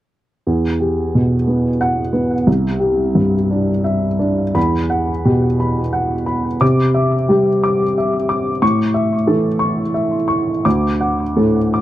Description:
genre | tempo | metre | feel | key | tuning
neoclassical minimalist piano | 59 BPM (dotted quarters) | 6/8 | uneven beats, rubato | E minor | A4 = 440 Hz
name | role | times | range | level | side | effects
dark upright piano | solo | 0.5-11.8 s | C2 to D6 | -14 LUFS | equal | none
room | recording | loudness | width
light reverb | dry, close 1970s-style studio recording | -14 LUFS | side -14 dB against mid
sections
0.5-4.6 A section; 4.6-11.8 B section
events
none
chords
0.5 Emadd9; 2.5 Cadd9; 4.6 Emadd9; 6.6 Cadd9; 8.6 A; 10.6 D

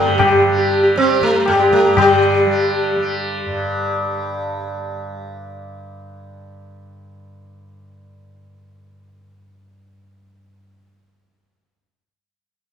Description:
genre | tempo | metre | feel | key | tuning
indian classical, Hindustani | 119 BPM | 4/4 | straight | unclear | A4 = 441 Hz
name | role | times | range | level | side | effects
sitar | melody | 0.0-5.2 s | G3 to G4 | -16 LUFS | equal | slapback echo
tanpura | drone | 0.0-10.6 s | G2 to G3 | -24 LUFS | equal | none
tabla | percussion | 0.2-2.2 s | none | -18 LUFS | left 2 dB | none
room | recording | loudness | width
moderate recital hall reverb, RT60 1.5 s | none | -14 LUFS | side -8 dB against mid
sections
0.0-2.0 A section; 2.0-4.0 B section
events
none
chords
none

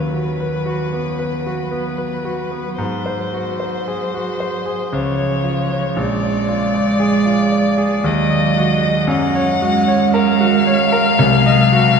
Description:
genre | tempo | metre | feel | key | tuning
classical, slow romantic movement for piano trio | 57 BPM | 3/4 | rubato | unclear | A4 = 437 Hz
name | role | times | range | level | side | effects
warm violin | melody | 0.0-12.0 s | B4 to Gb5 | -20 LUFS | left 5 dB | none
rich cello | second line | 0.0-12.0 s | F3 to Ab3 | -20 LUFS | right 5 dB | none
clear concert grand piano | accompaniment | 0.0-12.0 s | Bb1 to Eb5 | -18 LUFS | equal | none
room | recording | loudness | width
wet cathedral reverb, RT60 7.2 s | minimal, uncompressed stereo recording | -15 LUFS | side -6 dB against mid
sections
0.0-12.0 A section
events
none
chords
0.0 B/D#; 2.8 Ab7; 4.9 Db; 6.0 Bb7; 8.1 Ebm; 9.1 Gbmaj7; 11.2 Cdim

